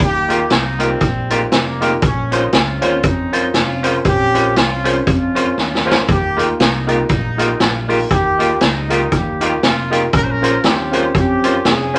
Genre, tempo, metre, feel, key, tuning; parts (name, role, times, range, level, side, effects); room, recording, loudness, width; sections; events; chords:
ska; 118 BPM; 4/4; swing 58% on 8ths; Eb mixolydian; A4 = 440 Hz
warm horn section; melody; 0.0-12.0 s; F3 to C5; -23 LUFS; equal
fingered electric bass; bass; 0.0-12.0 s; F1 to F2; -25 LUFS; equal
street-band drum kit; drums; 0.0-12.0 s; hi-hat, kick drum, snare drum; -19 LUFS; equal
electric guitar at the edge of break-up; accompaniment; 0.3-12.0 s; Bb3 to C5; -23 LUFS; equal
warm upright piano; stabs; 0.3-12.0 s; Db4 to C5; -23 LUFS; equal
wet studio ambience, RT60 0.5 s; -16 LUFS; mono
0.0-12.0 A section
drum fill 5.6-6.1
0.0 Ebadd9; 2.0 Bbmadd9; 6.1 Ebadd9; 10.1 Bbmadd9